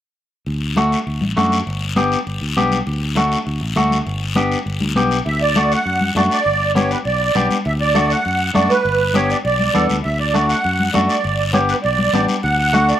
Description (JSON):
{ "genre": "latin, cumbia", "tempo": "200 BPM", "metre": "4/4", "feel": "straight", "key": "D major", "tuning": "A4 = 441 Hz", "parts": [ { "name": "fingered electric bass", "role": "bass", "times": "0.5-12.9 s", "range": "G1 to F#2", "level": "-22 LUFS", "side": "equal", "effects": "none" }, { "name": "congas", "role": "percussion", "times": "0.5-12.9 s", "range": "none", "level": "-22 LUFS", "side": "left 2 dB", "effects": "none" }, { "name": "guiro", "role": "percussion", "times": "0.5-13.0 s", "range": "none", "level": "-27 LUFS", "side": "left 6 dB", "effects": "none" }, { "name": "clean electric guitar", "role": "accompaniment", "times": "0.8-12.9 s", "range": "A3 to A4", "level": "-19 LUFS", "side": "left 1 dB", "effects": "slapback echo" }, { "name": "musette accordion", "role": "melody", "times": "5.3-13.0 s", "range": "B4 to F#5", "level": "-18 LUFS", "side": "right 3 dB", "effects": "none" } ], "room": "little or no reverb", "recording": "recorded outdoors, with no room sound", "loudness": "-15 LUFS", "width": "side -11 dB against mid", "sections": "0.5-5.3 A section; 5.3-13.0 B section", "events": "none", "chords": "0.5 D; 1.7 G; 2.9 D; 4.1 G; 5.3 D; 6.5 G; 7.7 D; 8.8 G; 10.0 D; 11.2 G; 12.4 D" }